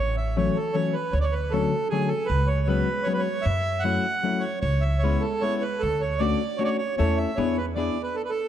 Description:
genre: musette waltz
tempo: 154 BPM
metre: 3/4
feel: rubato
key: A major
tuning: A4 = 441 Hz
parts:
  - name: accordion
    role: melody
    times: 0.0-8.5 s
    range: G#4 to F#5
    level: -26 LUFS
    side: right 3 dB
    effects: none
  - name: upright bass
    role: bass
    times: 0.0-7.9 s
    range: A1 to F#2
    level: -25 LUFS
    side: right 1 dB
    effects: none
  - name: hollow-body jazz guitar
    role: accompaniment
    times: 0.4-8.0 s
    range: D3 to A4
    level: -27 LUFS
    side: left 5 dB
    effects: none
room: moderate concert hall reverb, RT60 1.8 s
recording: dark, warm production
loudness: -22 LUFS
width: side -10 dB against mid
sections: 0.0-8.5 A section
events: none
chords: 0.0 A6; 1.1 Dmaj7; 2.3 C#7sus4; 3.5 F#m7; 4.6 C#m7; 5.8 Dmaj7; 7.0 A/E; 7.4 E7

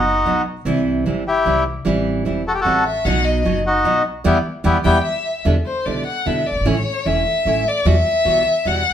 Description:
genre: tango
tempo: 150 BPM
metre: 3/4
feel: rubato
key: E harmonic minor, E minor from 5.4 s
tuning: A4 = 438 Hz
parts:
  - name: bandoneon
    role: melody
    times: 0.0-5.0 s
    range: B3 to A4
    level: -17 LUFS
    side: left 2 dB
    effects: none
  - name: nylon-string guitar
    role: accompaniment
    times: 0.0-8.8 s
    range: B2 to F#4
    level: -21 LUFS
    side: right 3 dB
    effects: none
  - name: upright bass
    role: bass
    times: 0.0-8.9 s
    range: E1 to E2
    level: -22 LUFS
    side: equal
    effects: none
  - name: warm violin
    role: second line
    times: 2.9-8.9 s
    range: C5 to G5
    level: -19 LUFS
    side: left 2 dB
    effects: none
room: wet studio reverb, RT60 0.8 s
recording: band playing live in one room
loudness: -16 LUFS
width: side -9 dB against mid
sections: 0.0-5.4 A section; 5.4-8.9 B section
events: band accent 4.2-5.4; violin solo 5.4-8.9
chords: 0.0 B; 0.6 C; 1.9 Am7; 3.0 B; 4.2 Em; 5.4 Em7; 6.7 A; 7.9 Emadd9

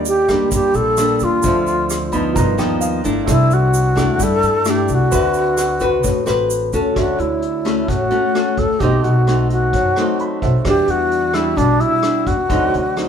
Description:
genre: bossa nova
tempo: 130 BPM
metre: 4/4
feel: straight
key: D major from 7.0 s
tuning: A4 = 440 Hz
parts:
  - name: nylon-string guitar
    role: accompaniment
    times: 0.0-13.1 s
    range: G2 to B4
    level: -20 LUFS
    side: left 2 dB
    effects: none
  - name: warm concert grand piano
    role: accompaniment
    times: 0.0-13.1 s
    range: Bb3 to B5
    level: -27 LUFS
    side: right 6 dB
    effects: none
  - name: upright bass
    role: bass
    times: 0.0-13.1 s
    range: G1 to G2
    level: -21 LUFS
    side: equal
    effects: none
  - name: vintage brush drum kit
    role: drums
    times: 0.0-13.1 s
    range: hi-hat, kick drum, rim click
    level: -25 LUFS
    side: equal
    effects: none
  - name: breathy alto flute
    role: melody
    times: 0.1-13.1 s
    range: D4 to A4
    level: -17 LUFS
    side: equal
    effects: none
  - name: egg shaker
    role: percussion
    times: 0.1-7.0 s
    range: none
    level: -29 LUFS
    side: right 6 dB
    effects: none
room: wet studio reverb, RT60 0.7 s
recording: heard from further back in the room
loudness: -14 LUFS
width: side -8 dB against mid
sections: 0.0-7.0 A section; 7.0-13.1 B section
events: grand piano fill 1.9-3.3, 10.0-10.7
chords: 0.0 Ebmaj7; 1.4 Dm9; 2.4 G7alt; 3.3 C69; 5.1 D13; 7.0 Dmaj7; 8.8 B7b9; 10.7 Em9; 12.5 D7b9

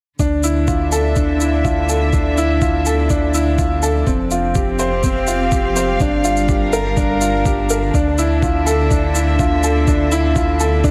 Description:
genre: piano and strings electronica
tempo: 124 BPM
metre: 4/4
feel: straight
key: D minor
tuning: A4 = 440 Hz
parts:
  - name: dark studio string section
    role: sustained chords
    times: 0.2-10.9 s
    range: D3 to F5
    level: -25 LUFS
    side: equal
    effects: sidechain pumping
  - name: clear upright piano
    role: riff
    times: 0.2-10.9 s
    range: C4 to C5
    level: -20 LUFS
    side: equal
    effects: delay
  - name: round analog bass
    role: bass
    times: 0.2-10.9 s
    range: F1 to D2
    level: -22 LUFS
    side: equal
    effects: sidechain pumping
  - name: electronic kick drum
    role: drums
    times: 0.2-10.9 s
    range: none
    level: -22 LUFS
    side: equal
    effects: overdrive, studio ambience
  - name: shaker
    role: drums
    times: 0.2-10.9 s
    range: none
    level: -30 LUFS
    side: equal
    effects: overdrive, studio ambience
room: light reverb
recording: none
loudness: -16 LUFS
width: mono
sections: 0.2-10.9 A section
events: none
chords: 0.2 Dmadd9; 4.1 Fsus2; 6.0 Gm7; 7.9 Dmadd9

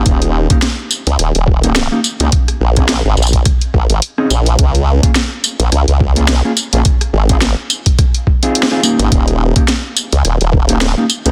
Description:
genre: glitch hop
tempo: 106 BPM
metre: 4/4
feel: swing 56% on 16ths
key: unclear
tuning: A4 = 439 Hz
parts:
  - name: mellow electric guitar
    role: stabs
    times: 0.0-11.3 s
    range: Bb3 to Ab4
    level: -21 LUFS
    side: equal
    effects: vibrato effect, sidechain pumping, dub echo
  - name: formant-sweep wobble bass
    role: bass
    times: 0.0-11.3 s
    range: Eb1 to Db2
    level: -15 LUFS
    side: equal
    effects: chorus, tube saturation
  - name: drum and bass drum kit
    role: drums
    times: 0.1-11.3 s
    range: hi-hat, rim click, snare drum, tambourine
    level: -18 LUFS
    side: equal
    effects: none
  - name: electronic kick drum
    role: drums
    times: 0.1-10.7 s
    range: none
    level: -15 LUFS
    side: equal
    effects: none
room: little or no reverb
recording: dense, heavily limited modern master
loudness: -13 LUFS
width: mono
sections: 0.0-11.3 A section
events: none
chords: 0.1 Eb7; 2.3 Bb7(no3); 4.6 Db5; 6.9 Ab6; 9.1 Eb7

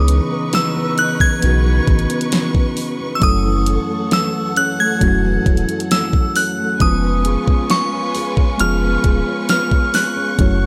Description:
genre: contemporary R&B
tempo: 67 BPM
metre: 4/4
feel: straight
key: C# minor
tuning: A4 = 440 Hz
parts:
  - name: glassy synth bell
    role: melody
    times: 0.0-10.7 s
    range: C#6 to G#6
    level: -22 LUFS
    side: equal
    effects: chorus, digital delay
  - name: mellow tine electric piano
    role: accompaniment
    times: 0.0-10.7 s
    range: E3 to C#5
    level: -24 LUFS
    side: equal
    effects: none
  - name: warm studio string section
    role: sustained chords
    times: 0.0-10.7 s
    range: D#4 to C#6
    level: -30 LUFS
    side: equal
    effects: none
  - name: nylon-string guitar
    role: arpeggios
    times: 0.0-10.7 s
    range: F#2 to G#4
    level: -27 LUFS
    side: equal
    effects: none
  - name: warm sub bass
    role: bass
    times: 0.0-10.7 s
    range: D#1 to C#2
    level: -20 LUFS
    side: equal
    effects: none
  - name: smooth R&B drum kit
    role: drums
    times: 0.1-10.6 s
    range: hi-hat, kick drum, snare drum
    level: -20 LUFS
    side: equal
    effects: none
room: light reverb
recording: none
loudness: -17 LUFS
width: mono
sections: 0.0-10.7 A section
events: none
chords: 0.0 C#m9; 3.2 F#m7; 6.8 C#7/E#

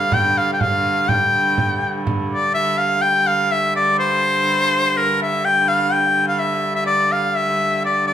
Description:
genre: medieval dance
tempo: 124 BPM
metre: 3/4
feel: straight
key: unclear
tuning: A4 = 440 Hz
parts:
  - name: edgy shawm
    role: melody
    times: 0.0-8.1 s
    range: Bb4 to G5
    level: -16 LUFS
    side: left 1 dB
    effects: none
  - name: rich hurdy-gurdy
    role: drone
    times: 0.0-8.1 s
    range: G2 to D3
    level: -24 LUFS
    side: right 1 dB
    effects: none
  - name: frame drum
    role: percussion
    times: 0.1-2.4 s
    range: none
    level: -23 LUFS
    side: right 2 dB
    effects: none
room: wet large studio reverb, RT60 0.9 s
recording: band playing live in one room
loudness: -16 LUFS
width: side -10 dB against mid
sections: 0.0-2.5 A section; 2.5-8.1 A section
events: none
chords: none

